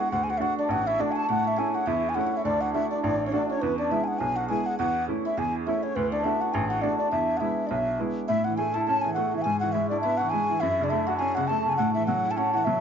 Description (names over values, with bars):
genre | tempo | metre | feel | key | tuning
celtic folk, Celtic reel | 206 BPM | 4/4 | swing 57% on 8ths | unclear | A4 = 440 Hz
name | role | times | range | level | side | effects
baroque flute | melody | 0.0-12.8 s | B4 to A5 | -27 LUFS | left 1 dB | none
hammered dulcimer | second line | 0.0-12.8 s | B3 to A4 | -30 LUFS | right 1 dB | none
clear baby grand piano | accompaniment | 0.0-12.8 s | A1 to F#4 | -28 LUFS | right 1 dB | none
room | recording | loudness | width
light reverb | dark, warm production, nothing above 7.5 kHz | -23 LUFS | side -7 dB against mid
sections
0.0-8.3 A section; 8.3-12.8 B section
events
none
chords
0.1 D; 1.3 A; 2.4 D; 3.6 E; 4.8 A/E; 6.0 D; 7.1 E; 8.3 A; 9.5 E/G#; 10.6 F#m; 11.8 A6